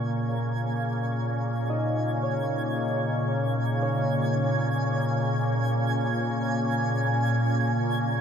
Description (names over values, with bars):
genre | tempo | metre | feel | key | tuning
ambient | 57 BPM | 4/4 | straight | unclear | A4 = 440 Hz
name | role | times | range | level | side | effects
muted felt-like synth keys | arpeggios | 0.0-8.2 s | Bb3 to Eb5 | -33 LUFS | equal | chorus, diffuse ambient delay
organ-like drone | drone | 0.0-8.2 s | Bb2 to Db3 | -25 LUFS | equal | ensemble chorus, built-in reverb
twinkling granular texture | texture | 0.0-8.2 s | Ab5 | -33 LUFS | right 2 dB | built-in reverb, wide subtle chorus
room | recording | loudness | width
wet huge ambient reverb, RT60 8.7 s | dreamy mix soaked in reverb | -24 LUFS | side -7 dB against mid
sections
0.0-8.2 A section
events
fade-in on synth texture 0.0-8.2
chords
0.0 Bbm7